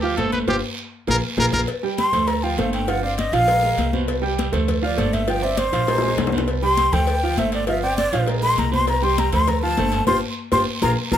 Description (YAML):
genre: latin, salsa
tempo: 200 BPM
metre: 4/4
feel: straight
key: unclear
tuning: A4 = 440 Hz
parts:
  - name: bright trumpet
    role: melody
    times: 0.0-1.6 s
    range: G4 to B4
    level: -23 LUFS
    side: equal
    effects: none
  - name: warm upright piano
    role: accompaniment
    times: 0.0-11.2 s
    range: B2 to G5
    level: -24 LUFS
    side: right 4 dB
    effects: none
  - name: upright bass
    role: bass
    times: 0.0-11.2 s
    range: G1 to D2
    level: -24 LUFS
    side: equal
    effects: none
  - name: congas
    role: percussion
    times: 0.0-11.2 s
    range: none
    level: -27 LUFS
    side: left 4 dB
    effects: none
  - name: cowbell and bongos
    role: percussion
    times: 0.2-11.2 s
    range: none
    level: -29 LUFS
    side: left 6 dB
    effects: none
  - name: guiro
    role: percussion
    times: 0.2-11.2 s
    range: none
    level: -33 LUFS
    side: right 5 dB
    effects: none
  - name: breathy mellow silver concert flute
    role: melody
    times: 2.0-11.2 s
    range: C5 to C6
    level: -21 LUFS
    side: left 1 dB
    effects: tape echo
room: moderate studio reverb, RT60 0.6 s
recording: none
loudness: -18 LUFS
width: side -10 dB against mid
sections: 0.0-1.7 A section; 1.7-11.2 B section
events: band accent 0.5-1.7, 10.1-11.2; drum fill 0.9-1.7, 5.9-6.5; flute solo 1.7-11.2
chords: 0.5 G7sus4; 1.1 Bb5; 1.7 C5; 2.3 Dm7; 2.9 G7sus4; 3.5 Bb5; 4.1 C5; 4.7 Dm7; 5.3 G7sus4; 5.9 Abadd9/Bb; 6.5 C5; 7.1 Dm7; 7.7 G7sus4; 8.3 Abadd9/Bb; 8.9 C5; 9.5 Dm7; 10.1 G7sus4; 10.7 Bb5